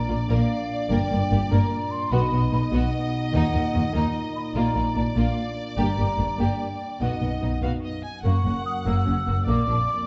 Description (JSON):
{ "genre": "cinematic, heroic adventure film score", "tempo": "98 BPM (dotted quarters)", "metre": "6/8", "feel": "straight", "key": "unclear", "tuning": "A4 = 440 Hz", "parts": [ { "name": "rich symphonic violin section", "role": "melody", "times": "0.0-10.1 s", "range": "D5 to Ab5", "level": "-37 LUFS", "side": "equal", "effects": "none" }, { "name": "mellow hollow concert flute", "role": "second line", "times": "0.0-10.1 s", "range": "F5 to E6", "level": "-32 LUFS", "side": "equal", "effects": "none" }, { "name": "warm trombone section", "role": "sustained chords", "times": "0.0-10.1 s", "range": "E#2 to D#4", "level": "-33 LUFS", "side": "equal", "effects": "none" }, { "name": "warm symphonic violin section", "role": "second line", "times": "0.1-9.8 s", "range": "Bb3 to Bb4", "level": "-39 LUFS", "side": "equal", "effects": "none" }, { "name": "warm symphonic viola section", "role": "accompaniment", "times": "0.1-9.8 s", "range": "Bb3 to B3", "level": "-33 LUFS", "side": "equal", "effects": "none" }, { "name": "dark symphonic cello section", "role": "bass", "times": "0.1-9.8 s", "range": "F#2 to Eb3", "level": "-30 LUFS", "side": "equal", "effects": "none" }, { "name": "warm symphonic double bass section", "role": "bass", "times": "0.1-9.8 s", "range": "F#1 to Eb2", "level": "-28 LUFS", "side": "equal", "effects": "none" } ], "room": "moderate scoring stage reverb, RT60 1.7 s", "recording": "dark, warm production, nothing above 7.8 kHz", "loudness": "-24 LUFS", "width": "mono", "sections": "0.0-8.3 A section; 8.3-10.1 B section", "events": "none", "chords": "0.0 Bb; 0.9 Gm; 2.1 B; 3.3 Ebm; 4.5 Bb; 5.8 Gm; 7.0 B; 8.3 F#; 9.5 A#", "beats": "0.29 | 0.90 1.51 | 2.12 2.73 | 3.33 3.94 | 4.55 5.16 | 5.78 6.39 | 7.01 7.63 | 8.26 8.87 | 9.48" }